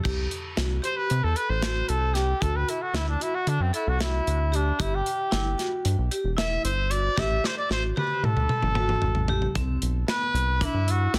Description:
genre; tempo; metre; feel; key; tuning
progressive instrumental, band music in an uneven meter; 227 BPM (eighths); 9/8; straight; unclear; A4 = 436 Hz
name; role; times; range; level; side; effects
vibraphone with medium hard mallets; arpeggios; 0.0-11.1 s; B3 to A4; -35 LUFS; equal; none
round analog bass; bass; 0.0-11.2 s; E1 to D3; -28 LUFS; equal; none
modern studio drum kit; drums; 0.1-11.2 s; crash cymbal, hi-hat, kick drum, snare drum, toms; -32 LUFS; equal; none
clear trumpet; melody; 0.8-11.2 s; C4 to E5; -30 LUFS; equal; tape echo
room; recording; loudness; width
small room reverb; dense, heavily limited modern master; -26 LUFS; mono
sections
0.0-9.6 A section; 9.6-11.2 B section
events
trumpet solo 0.0-9.6; drum fill 7.2-9.6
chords
0.0 C5; 2.4 D7; 4.8 G5; 7.2 Gmaj7sus2; 9.6 Cmaj7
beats
| 0.04 0.31 0.57 0.84 1.10 1.36 1.63 1.89 2.16 | 2.42 2.68 2.95 3.21 3.48 3.74 4.00 4.27 4.53 | 4.80 5.06 5.33 5.59 5.85 6.12 6.38 6.65 6.91 | 7.17 7.44 7.70 7.97 8.23 8.50 8.76 9.03 9.29 | 9.55 9.82 10.08 10.35 10.61 10.87 11.14

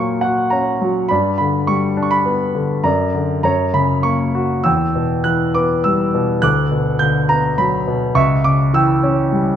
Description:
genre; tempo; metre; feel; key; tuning
classical, lyrical solo piano; 103 BPM; 3/4; rubato; unclear; A4 = 438 Hz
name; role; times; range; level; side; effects
clear concert grand piano; solo; 0.0-9.6 s; C#2 to G6; -14 LUFS; equal; none
room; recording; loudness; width
moderate scoring stage reverb, RT60 1.5 s; minimal, uncompressed stereo recording; -14 LUFS; side -9 dB against mid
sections
0.0-9.6 A section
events
none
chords
0.0 F#/A#; 1.1 G; 2.8 F#aug; 3.4 F#; 4.7 Em; 6.4 Bm/D; 8.2 C#dim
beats
0.52 | 1.10 1.68 2.26 | 2.85 3.44 4.05 | 4.65 5.26 5.85 | 6.43 7.00 7.58 | 8.15 8.73 9.32

